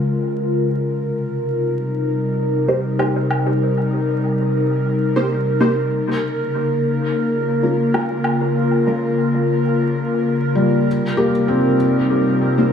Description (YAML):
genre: ambient dub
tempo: 97 BPM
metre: 4/4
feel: swing 55% on 16ths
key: Bb dorian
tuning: A4 = 439 Hz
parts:
  - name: airy breathy pad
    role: sustained chords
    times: 0.0-12.7 s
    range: C3 to Bb4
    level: -17 LUFS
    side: left 1 dB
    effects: chorus
  - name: filtered dub chord stab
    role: stabs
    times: 2.7-12.7 s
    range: Ab3 to C5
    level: -23 LUFS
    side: equal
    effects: phaser, ensemble chorus, dub echo
  - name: woodblock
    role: drums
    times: 3.0-3.4, 7.9-8.4 s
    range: none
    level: -27 LUFS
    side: equal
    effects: dub echo
  - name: felt-muted upright piano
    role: arpeggios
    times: 10.6-12.7 s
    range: G3 to G4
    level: -18 LUFS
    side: left 1 dB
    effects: tape echo
room: moderate echo chamber reverb, RT60 2.2 s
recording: vinyl crackle, small room ambience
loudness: -16 LUFS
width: side -7 dB against mid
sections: 0.0-12.7 A section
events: filter sweep on analog synth pad 0.0-12.7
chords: 0.0 Bbm7; 1.0 Cm7; 5.9 Bbm; 10.9 Cm7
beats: 0.35 | 0.96 1.58 2.20 2.82 | 3.44 4.06 4.68 5.29 | 5.91 6.53 7.15 7.77 | 8.39 9.01 9.62 10.24 | 10.86 11.48 12.10 12.72